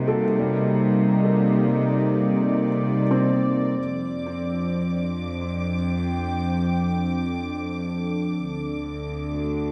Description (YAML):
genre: ambient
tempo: free time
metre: none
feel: none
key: F mixolydian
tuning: A4 = 440 Hz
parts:
  - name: warm analog pad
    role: sustained chords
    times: 0.0-9.7 s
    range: C3 to A5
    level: -25 LUFS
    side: equal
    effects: chorus
  - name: felt-muted upright piano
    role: arpeggios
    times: 0.0-5.7 s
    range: G3 to A4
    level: -30 LUFS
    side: equal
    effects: tape echo
  - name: clear chamber cello section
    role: bass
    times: 0.0-9.7 s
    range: D2 to C3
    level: -33 LUFS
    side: equal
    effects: none
  - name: rich studio violin section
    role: texture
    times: 3.8-9.7 s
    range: D6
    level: -40 LUFS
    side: equal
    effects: none
room: wet concert hall reverb, RT60 2.1 s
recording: dark, warm production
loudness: -24 LUFS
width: mono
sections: 0.0-3.8 A section; 3.8-9.7 B section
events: fade-out on violin section 3.8-9.7; filter sweep on analog synth pad 3.8-9.7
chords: 0.0 Cm7; 3.8 F6; 8.4 D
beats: free time